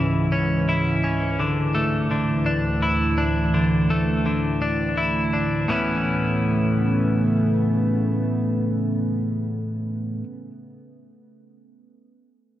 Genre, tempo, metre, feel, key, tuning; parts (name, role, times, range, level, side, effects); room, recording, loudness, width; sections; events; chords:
rock; 56 BPM (dotted quarters); 6/8; straight; A major; A4 = 440 Hz
evolving wavetable pad; sustained chords; 0.0-10.2 s; C#2 to B3; -25 LUFS; right 1 dB; chorus, built-in reverb
twelve-string electric guitar; arpeggios; 0.0-10.3 s; A2 to E4; -21 LUFS; left 1 dB; analog delay
moderate recital hall reverb, RT60 1.5 s; dark, warm production; -20 LUFS; side -13 dB against mid
0.0-5.7 A section; 5.7-10.0 B section
0.0 C#m; 1.4 Dsus2; 5.7 Aadd9